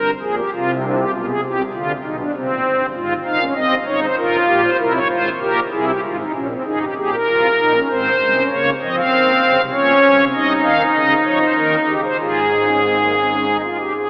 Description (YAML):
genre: classical, baroque-style 3-part fugue for pipe organ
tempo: 98 BPM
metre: 3/4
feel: straight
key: Ab major from 10.3 s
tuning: A4 = 440 Hz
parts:
  - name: pipe organ, strings celeste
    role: solo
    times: 0.0-14.1 s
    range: G1 to F5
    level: -17 LUFS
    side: equal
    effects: none
room: wet cathedral reverb, RT60 5.1 s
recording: AM radio sound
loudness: -17 LUFS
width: mono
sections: 0.0-6.6 A section; 6.6-14.1 B section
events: none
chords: 0.0 N.C.; 0.5 Csus24; 1.1 G7/B; 2.3 C5; 2.9 Fm/Ab; 4.2 Gm7; 4.8 C7; 6.0 Fm/Ab; 6.6 Ab; 7.9 Abadd11; 8.5 Bbm/Db; 9.7 Gdim/Bb; 10.3 Cm; 10.9 Dbmaj9; 11.6 Eb7; 12.2 Ab